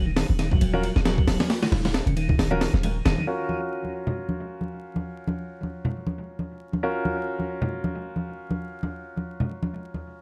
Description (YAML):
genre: breakbeat, breaks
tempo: 135 BPM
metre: 4/4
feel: swing 57% on 16ths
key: unclear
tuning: A4 = 440 Hz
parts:
  - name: tonewheel organ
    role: riff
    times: 0.0-3.3 s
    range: Db3 to Ab3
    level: -32 LUFS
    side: equal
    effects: overdrive, slow rotary speaker, tube saturation, analog delay
  - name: warm 808-style bass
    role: bass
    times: 0.0-3.1 s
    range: Eb1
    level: -27 LUFS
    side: equal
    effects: none
  - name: breakbeat sampler-style drum kit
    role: drums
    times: 0.2-3.2 s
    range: hi-hat, kick drum, ride cymbal, snare drum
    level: -27 LUFS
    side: equal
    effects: none
  - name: congas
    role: percussion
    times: 0.3-10.0 s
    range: none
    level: -33 LUFS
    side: equal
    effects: analog delay
  - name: bright grand piano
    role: stabs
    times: 0.7-10.2 s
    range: Db4 to Bb4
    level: -34 LUFS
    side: equal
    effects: low-pass filter, analog delay
room: little or no reverb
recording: echo-heavy mix, vinyl crackle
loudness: -26 LUFS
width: mono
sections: 0.0-3.3 A section; 3.3-10.2 B section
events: kick drops out 2.4-3.3; filter sweep on grand piano 3.3-10.2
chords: 0.0 Ebm7; 3.3 Ab9sus4 (rootless)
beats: 0.17 0.61 1.05 | 1.50 1.94 2.39 2.83 | 3.28 3.72 4.17 4.61 | 5.05 5.50 5.94 6.39 | 6.83 7.28 7.72 8.16 | 8.61 9.05 9.50 9.94